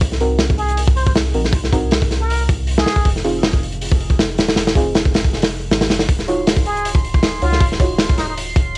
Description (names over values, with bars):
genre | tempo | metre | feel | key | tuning
drum and bass, jungle | 158 BPM | 4/4 | swing 54% on 16ths | unclear | A4 = 439 Hz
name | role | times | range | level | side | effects
soft dub sub bass | bass | 0.0-8.8 s | Eb1 to Db2 | -22 LUFS | equal | tube saturation
crunchy breakbeat drum kit | drums | 0.0-8.8 s | hi-hat, kick drum, snare drum | -16 LUFS | equal | cassette tape
deep mellow chord stab | stabs | 0.2-8.8 s | C4 to Db5 | -24 LUFS | right 1 dB | chorus, cassette tape, dub echo
trumpet with plunger mute | melody | 0.6-3.1, 6.7-8.3 s | Eb4 to C5 | -24 LUFS | equal | vintage 12-bit sampler grit, dub echo
drifting glass-harmonics texture | texture | 6.3-8.8 s | C6 | -29 LUFS | right 2 dB | chorus, built-in reverb
room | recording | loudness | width
light reverb | home recording on cassette | -14 LUFS | side -27 dB against mid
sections
0.0-8.8 A section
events
none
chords
0.0 Cm7b5; 3.1 Fm7; 6.1 Ebm9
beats
| 0.02 0.40 0.78 1.16 | 1.53 1.91 2.29 2.67 | 3.05 3.43 3.81 4.19 | 4.57 4.95 5.33 5.71 | 6.09 6.47 6.85 7.23 | 7.61 7.99 8.37 8.75